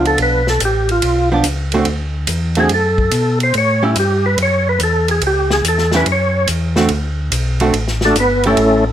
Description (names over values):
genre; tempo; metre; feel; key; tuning
soul jazz organ trio; 143 BPM; 4/4; swing 68% on 8ths; D major; A4 = 439 Hz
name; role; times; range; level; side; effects
percussive tonewheel organ; melody; 0.0-8.8 s; A3 to C#5; -15 LUFS; equal; slow rotary speaker, overdrive, chorus vibrato, plate reverb
archtop guitar, miked and amplified; accompaniment; 0.0-8.6 s; D3 to F#4; -17 LUFS; right 3 dB; none
mellow tonewheel organ; bass; 0.0-8.9 s; G1 to B2; -18 LUFS; left 1 dB; slow rotary speaker
warm soul drum kit; drums; 0.1-8.7 s; hi-hat, kick drum, ride cymbal, snare drum; -22 LUFS; right 1 dB; none
room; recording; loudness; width
moderate club reverb, RT60 0.6 s; none; -13 LUFS; side -10 dB against mid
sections
0.0-8.9 A section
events
tonewheel organ solo 0.0-8.9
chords
0.0 G7; 1.9 D; 3.5 A7; 6.9 D5